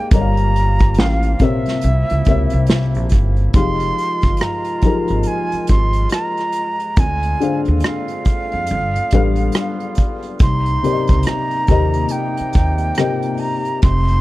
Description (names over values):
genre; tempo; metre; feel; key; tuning
R&B, neo-soul; 70 BPM; 4/4; swing 62% on 16ths; F minor; A4 = 440 Hz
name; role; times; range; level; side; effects
breathy bright concert flute; melody; 0.0-14.2 s; E5 to C6; -22 LUFS; right 2 dB; none
dark upright piano; accompaniment; 0.0-13.9 s; C3 to F5; -22 LUFS; left 4 dB; none
warm woodwind section; sustained chords; 0.0-14.2 s; C3 to F4; -28 LUFS; right 1 dB; none
upright bass; bass; 0.1-14.2 s; F1 to F2; -17 LUFS; equal; none
unplugged drum kit; drums; 0.1-14.2 s; hi-hat, kick drum, rim click, snare drum; -15 LUFS; equal; none
room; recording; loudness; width
studio reverb; dry, close 1970s-style studio recording; -14 LUFS; side -18 dB against mid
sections
0.0-3.5 A section; 3.5-14.2 B section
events
none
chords
0.1 Gm7b5; 1.8 C7b9; 3.5 Fm9; 7.0 Dm7b5; 8.7 G7; 10.4 Cm7